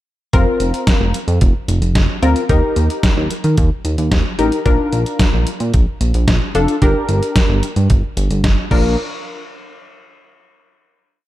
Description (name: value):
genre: synth-pop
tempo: 111 BPM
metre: 4/4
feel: straight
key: Bb major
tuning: A4 = 440 Hz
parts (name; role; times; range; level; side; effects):
- funky polysynth comp; accompaniment; 0.3-9.0 s; C4 to Bb4; -19 LUFS; left 2 dB; chorus
- chorused synth bass; bass; 0.3-9.0 s; F1 to Eb3; -16 LUFS; equal; none
- detuned 8-bit digital drum machine; drums; 0.3-8.8 s; crash cymbal, hi-hat, kick drum, snare drum; -17 LUFS; equal; none
room: light reverb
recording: dark, warm production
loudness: -13 LUFS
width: side -15 dB against mid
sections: 0.3-9.0 verse; 9.0-11.1 final hit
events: none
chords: 0.3 Fsus4; 2.5 Eb; 4.7 Bb; 6.8 Gm; 8.7 Bb; 9.0 N.C.